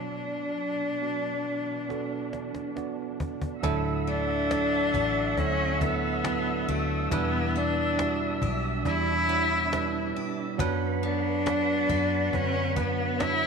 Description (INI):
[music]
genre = pop ballad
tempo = 69 BPM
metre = 4/4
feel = straight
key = D major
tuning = A4 = 436 Hz
[part]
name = rich cello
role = melody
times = 0.0-13.5 s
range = A3 to E4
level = -28 LUFS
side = left 2 dB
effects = none
[part]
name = barky tine electric piano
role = accompaniment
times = 0.0-13.5 s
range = A2 to D5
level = -32 LUFS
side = right 10 dB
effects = medium stereo tremolo
[part]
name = muted studio string section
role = sustained chords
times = 0.0-13.5 s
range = B2 to E6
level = -35 LUFS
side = right 1 dB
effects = none
[part]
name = cajon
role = drums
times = 1.9-13.4 s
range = none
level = -33 LUFS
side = left 2 dB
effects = none
[part]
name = picked steel-string acoustic guitar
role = arpeggios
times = 3.6-13.5 s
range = D3 to G4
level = -37 LUFS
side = left 12 dB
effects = none
[part]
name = vintage muted fingered electric bass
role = bass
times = 3.6-13.5 s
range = A1 to F#2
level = -32 LUFS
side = left 2 dB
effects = none
[sound]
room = moderate plate reverb, RT60 2.8 s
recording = 1960s-style stereo with parts hard left and right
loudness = -25 LUFS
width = side -5 dB against mid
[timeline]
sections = 0.0-3.6 A section; 3.6-13.5 B section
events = drum fill 1.9-3.6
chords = 0.0 Bm; 3.6 Dadd9; 7.1 Em7; 10.6 Bm/F#